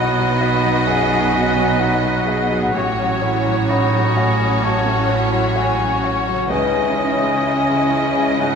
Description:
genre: cinematic.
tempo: 64 BPM.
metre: 4/4.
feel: rubato.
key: unclear.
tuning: A4 = 440 Hz.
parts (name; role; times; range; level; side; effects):
warm symphonic violin section; melody; 0.0-8.6 s; C#5 to D#5; -24 LUFS; left 1 dB; none.
mellow hollow silver concert flute; second line; 0.0-8.6 s; F#5 to B5; -24 LUFS; left 3 dB; none.
warm clarinet; second line; 0.0-8.6 s; C#4 to G#4; -28 LUFS; equal; none.
warm oboe; second line; 0.0-8.6 s; B4 to F#5; -25 LUFS; right 1 dB; none.
warm symphonic violin section; second line; 0.0-8.6 s; E4 to F#4; -27 LUFS; left 2 dB; none.
clear baby grand piano; accompaniment; 0.0-8.6 s; A1 to D#5; -24 LUFS; left 1 dB; none.
clear symphonic viola section; accompaniment; 0.0-8.6 s; B3 to C#4; -26 LUFS; right 2 dB; none.
mellow French horn section; sustained chords; 0.0-8.6 s; E3 to D#4; -27 LUFS; left 1 dB; none.
concert harp; arpeggios; 0.0-8.6 s; A2 to D#5; -30 LUFS; left 8 dB; none.
rich symphonic cello section; bass; 0.0-8.6 s; A2 to C#3; -24 LUFS; right 2 dB; none.
rich symphonic double bass section; bass; 0.0-8.6 s; A1 to C#2; -24 LUFS; right 4 dB; none.
room: wet scoring stage reverb, RT60 2.0 s.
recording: minimal, uncompressed stereo recording.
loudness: -15 LUFS.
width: side -6 dB against mid.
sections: 0.0-8.6 A section.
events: none.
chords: 0.0 B; 2.7 F#m/A; 6.5 C#madd9.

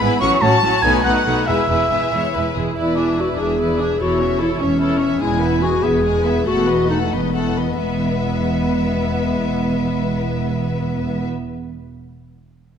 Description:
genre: quick classical-period movement for symphony orchestra.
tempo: 86-100 BPM (dotted quarters).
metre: 6/8.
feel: rubato.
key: E major.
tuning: A4 = 440 Hz.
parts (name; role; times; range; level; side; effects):
warm studio violin section; melody; 0.0-11.3 s; C#5 to C#6; -28 LUFS; left 5 dB; none.
rich chamber violin section; second line; 0.0-11.3 s; F#4 to C#5; -25 LUFS; left 7 dB; none.
rich symphonic viola section; accompaniment; 0.0-11.3 s; F#3 to E4; -24 LUFS; right 1 dB; none.
dark symphonic cello section; bass; 0.0-11.3 s; E2 to B2; -24 LUFS; right 3 dB; none.
warm symphonic double bass section; bass; 0.0-11.3 s; E1 to B1; -25 LUFS; right 3 dB; none.
warm oboe; second line; 0.2-2.6 s; E5 to C#6; -19 LUFS; equal; none.
mellow clarinet; second line; 2.8-11.3 s; G#3 to G#4; -20 LUFS; left 2 dB; none.
room: wet concert hall reverb, RT60 1.9 s.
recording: none.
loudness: -16 LUFS.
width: side -8 dB against mid.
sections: 0.0-2.8 A section; 2.8-7.8 B section; 7.8-10.5 C section.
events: slowing down 4.6-7.8.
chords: 0.2 F#m/A; 0.8 B7; 1.5 E; 2.8 E7; 4.0 A/E; 5.2 E; 6.5 B7/E; 7.8 E.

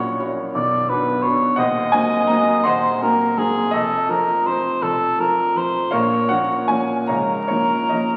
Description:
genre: classical, romantic duo for cor anglais and grand piano.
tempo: 47-58 BPM (dotted quarters).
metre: 6/8.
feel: rubato.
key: Bb minor.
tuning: A4 = 440 Hz.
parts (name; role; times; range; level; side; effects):
mellow cor anglais; melody; 0.0-8.2 s; Ab4 to Eb5; -22 LUFS; equal; none.
warm baby grand piano; accompaniment; 0.0-8.2 s; B0 to C6; -22 LUFS; equal; none.
room: wet recital hall reverb, RT60 1.5 s.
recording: very old 78 rpm record, vinyl crackle.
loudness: -19 LUFS.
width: mono.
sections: 0.0-8.2 A section.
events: none.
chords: 0.0 F#7/A#; 0.5 Bm; 1.6 Cm7b5/Eb; 3.7 F; 5.9 Bbm; 7.1 Bbm/Db.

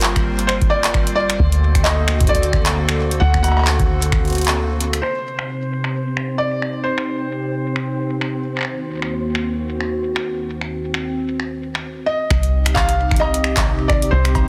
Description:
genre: IDM.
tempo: 132 BPM.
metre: 4/4.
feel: swing 56% on 16ths.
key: C dorian.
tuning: A4 = 440 Hz.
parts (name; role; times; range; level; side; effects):
felt-muted upright piano; melody; 0.0-8.4, 12.1-14.5 s; Bb4 to F#5; -25 LUFS; equal; delay.
hollow soft pad; sustained chords; 0.0-14.5 s; Eb2 to Bb4; -26 LUFS; equal; chorus.
woody FM bass; bass; 0.0-5.0, 12.3-14.5 s; G1 to D2; -22 LUFS; equal; none.
booming analog drum machine; drums; 0.0-14.5 s; cowbell, finger snaps, handclaps, hi-hat, shaker; -25 LUFS; equal; soft clipping on snare, low-pass filter on snare, low-pass filter on hats, low-pass filter on perc, low-pass filter on room, delay.
bubbling stepped-filter texture; texture; 0.0-11.8 s; C4 to C5; -34 LUFS; equal; chorus, built-in reverb.
electronic kick drum; drums; 0.2-4.2, 12.3-14.5 s; none; -22 LUFS; equal; none.
room: light reverb.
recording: dense, heavily limited modern master.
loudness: -19 LUFS.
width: mono.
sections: 0.0-5.0 A section; 5.0-12.3 B section; 12.3-14.5 A section.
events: break 4.6-5.0; filter sweep on analog synth pad 5.0-12.3.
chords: 0.0 Gm7; 1.4 D; 5.0 Cm; 8.7 Ebm; 12.3 Cm.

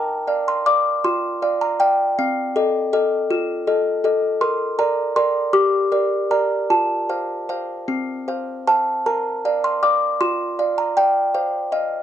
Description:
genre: classical, lullaby for music box.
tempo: 53 BPM (dotted quarters).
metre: 6/8.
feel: rubato.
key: Bb major.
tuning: A4 = 440 Hz.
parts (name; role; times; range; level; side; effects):
music box; solo; 0.0-12.0 s; C4 to D6; -18 LUFS; equal; none.
room: moderate small room reverb, RT60 0.6 s.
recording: cassette tape.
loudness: -18 LUFS.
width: side -10 dB against mid.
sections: 0.0-12.0 A section.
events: none.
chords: 0.0 Bb; 2.2 F7/C; 4.4 Bb; 5.5 Gm; 6.7 F; 9.1 Bb; 11.3 F5/C.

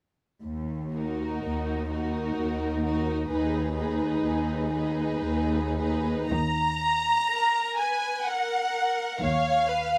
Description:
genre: classical, slow romantic movement for string orchestra.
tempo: 61 BPM.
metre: 3/4.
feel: uneven beats, rubato.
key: Eb minor.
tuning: A4 = 440 Hz.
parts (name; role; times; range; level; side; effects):
rich studio cello section; bass; 0.4-10.0 s; Eb2 to Eb3; -32 LUFS; equal; none.
warm studio violin section; melody; 0.9-10.0 s; Bb4 to Bb5; -32 LUFS; equal; none.
rich studio violin section; second line; 0.9-10.0 s; Gb4 to Bb5; -34 LUFS; equal; none.
rich studio viola section; accompaniment; 0.9-10.0 s; Eb4 to Db5; -33 LUFS; equal; none.
rich studio double bass section; bass; 6.3-10.0 s; Eb2; -35 LUFS; equal; none.
room: moderate large studio reverb, RT60 1.2 s.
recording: none.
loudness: -27 LUFS.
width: mono.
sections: 0.4-6.3 A section; 6.3-10.0 B section.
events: none.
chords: 0.4 Ebm.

